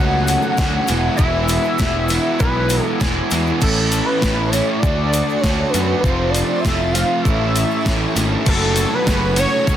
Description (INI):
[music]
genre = indie rock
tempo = 99 BPM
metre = 4/4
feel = straight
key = A major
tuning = A4 = 440 Hz
[part]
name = fat analog lead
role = melody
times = 0.0-9.8 s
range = A4 to F#5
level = -21 LUFS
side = equal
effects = chorus
[part]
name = lush unison pad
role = sustained chords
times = 0.0-9.8 s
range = D4 to C#6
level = -30 LUFS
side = equal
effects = chorus
[part]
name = overdriven electric guitar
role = riff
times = 0.0-9.8 s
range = A2 to F#4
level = -23 LUFS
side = right 11 dB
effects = analog chorus, analog delay
[part]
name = raw garage guitar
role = riff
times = 0.0-9.8 s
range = A2 to F#4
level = -24 LUFS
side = left 10 dB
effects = overdrive
[part]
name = fuzz picked electric bass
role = bass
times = 0.0-9.8 s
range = E1 to F#2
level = -21 LUFS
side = equal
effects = overdrive
[part]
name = crisp 8-bit digital drum machine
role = drums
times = 0.3-9.8 s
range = crash cymbal, hi-hat, kick drum, snare drum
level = -20 LUFS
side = equal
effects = overdrive
[part]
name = tube shaker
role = percussion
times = 0.3-9.8 s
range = none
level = -31 LUFS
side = left 14 dB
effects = none
[sound]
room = little or no reverb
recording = dense, heavily limited modern master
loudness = -15 LUFS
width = side -10 dB against mid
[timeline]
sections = 0.0-9.8 A section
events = none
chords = 0.0 F#madd9; 0.9 Eadd9; 3.6 A; 4.8 Dmaj7; 6.0 F; 7.3 A; 8.5 F#madd9